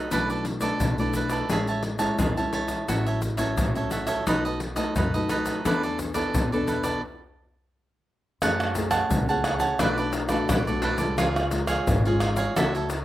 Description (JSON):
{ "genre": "samba and choro", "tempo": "87 BPM", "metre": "4/4", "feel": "straight", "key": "F# harmonic minor from 8.4 s", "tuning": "A4 = 440 Hz", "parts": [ { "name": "cavaquinho", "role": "accompaniment", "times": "0.0-12.9 s", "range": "D4 to A5", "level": "-28 LUFS", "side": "right 3 dB", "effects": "none" }, { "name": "nylon-string guitar", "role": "accompaniment", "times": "0.0-13.0 s", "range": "F#2 to A4", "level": "-29 LUFS", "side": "left 2 dB", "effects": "slapback echo" }, { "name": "upright bass", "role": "bass", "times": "0.1-13.0 s", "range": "G#1 to F#2", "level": "-31 LUFS", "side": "equal", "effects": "none" }, { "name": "egg shaker, surdo, pandeiro and tamborim", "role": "percussion", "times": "0.1-13.0 s", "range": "none", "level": "-27 LUFS", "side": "left 1 dB", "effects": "none" } ], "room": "little or no reverb", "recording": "recorded outdoors, with no room sound", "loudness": "-22 LUFS", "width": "side -14 dB against mid", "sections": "0.0-8.4 A section; 8.4-13.0 B section", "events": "stop 7.0-8.4", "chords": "0.1 E7sus4/B; 1.5 Amaj7; 2.9 F#m7/A; 4.3 B7; 5.7 E7sus4; 7.0 N.C.; 8.4 F#madd9; 9.8 Bm7; 11.2 C#", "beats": "| 0.12 0.81 1.50 2.19 | 2.89 3.58 4.27 4.96 | 5.65 6.35 7.04 7.73 | 8.42 9.11 9.80 10.49 | 11.19 11.88 12.57" }